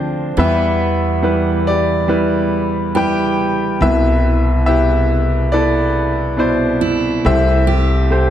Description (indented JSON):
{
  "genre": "acoustic folk-pop ballad",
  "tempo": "70 BPM",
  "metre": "4/4",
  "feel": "straight",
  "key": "unclear",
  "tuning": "A4 = 441 Hz",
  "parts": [
    { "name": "clear baby grand piano", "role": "melody", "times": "0.0-8.3 s", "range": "C2 to G5", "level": "-15 LUFS", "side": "equal", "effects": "none" },
    { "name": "picked steel-string acoustic guitar", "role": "arpeggios", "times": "0.0-8.3 s", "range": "B3 to G4", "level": "-23 LUFS", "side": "right 5 dB", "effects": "none" },
    { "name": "upright bass", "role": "bass", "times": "0.0-8.3 s", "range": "C2 to E2", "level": "-18 LUFS", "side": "equal", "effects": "none" }
  ],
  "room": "moderate scoring stage reverb, RT60 1.9 s",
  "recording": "none",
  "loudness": "-13 LUFS",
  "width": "side -10 dB against mid",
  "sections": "0.0-8.3 A section",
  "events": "none",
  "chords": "0.4 Em; 3.8 Cmaj7"
}